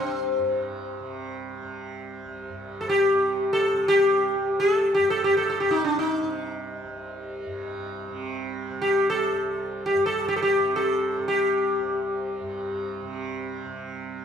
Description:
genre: indian classical, Hindustani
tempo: free time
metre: none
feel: none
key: unclear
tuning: A4 = 440 Hz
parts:
  - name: sitar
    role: melody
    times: 0.0-13.6 s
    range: C4 to A4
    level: -22 LUFS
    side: left 1 dB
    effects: none
  - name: tanpura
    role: drone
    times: 0.0-14.2 s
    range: C2 to C3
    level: -34 LUFS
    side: right 3 dB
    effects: none
room: wet large studio reverb, RT60 1.2 s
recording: band playing live in one room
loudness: -22 LUFS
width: side -7 dB against mid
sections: 0.0-2.5 A section; 2.5-14.2 A section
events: none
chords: none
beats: free time

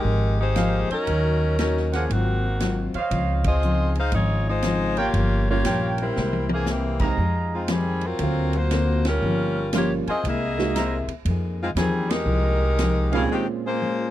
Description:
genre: jazz, big band swing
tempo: 118 BPM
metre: 4/4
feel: swing 66% on 8ths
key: F minor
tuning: A4 = 440 Hz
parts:
  - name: clear saxophone section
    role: melody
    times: 0.0-14.1 s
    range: Eb3 to F5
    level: -25 LUFS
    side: left 1 dB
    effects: none
  - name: warm baby grand piano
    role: accompaniment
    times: 0.0, 5.5-13.8 s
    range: Bb2 to E#5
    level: -28 LUFS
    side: right 8 dB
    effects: none
  - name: upright bass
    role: bass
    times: 0.0-13.2 s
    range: G1 to F2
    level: -24 LUFS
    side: equal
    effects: none
  - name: picked steel-string acoustic guitar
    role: accompaniment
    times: 0.1-14.1 s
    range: G2 to Ab4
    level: -28 LUFS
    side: left 3 dB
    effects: none
  - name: mellow trumpet section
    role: stabs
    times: 0.6-13.2 s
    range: Ab4 to Bb5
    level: -28 LUFS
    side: right 4 dB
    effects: none
  - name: swinging big-band drum kit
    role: drums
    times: 0.6-13.2 s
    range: crash cymbal, hi-hat, kick drum, ride cymbal, snare drum, toms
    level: -30 LUFS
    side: equal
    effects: none
room: little or no reverb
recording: dry, close 1970s-style studio recording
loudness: -20 LUFS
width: side -13 dB against mid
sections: 0.0-14.1 A section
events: band accent 3.4, 9.0, 12.0; drum fill 6.2-6.7; break 13.3-14.1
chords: 0.0 Fm11; 1.1 Ebm7; 2.1 Ab13; 3.1 Dbmaj9; 5.1 Gm7b5; 6.2 C7b13; 7.2 Fm9; 8.2 D7alt; 9.2 Gm7b5; 10.2 C7alt; 11.3 Fm11; 13.3 Bbm7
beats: 0.05 0.56 | 1.07 1.58 2.09 2.60 | 3.11 3.62 4.13 4.64 | 5.15 5.66 6.17 6.68 | 7.19 7.70 8.21 8.71 | 9.22 9.73 10.24 10.75 | 11.26 11.77 12.28 12.79 | 13.30 13.81

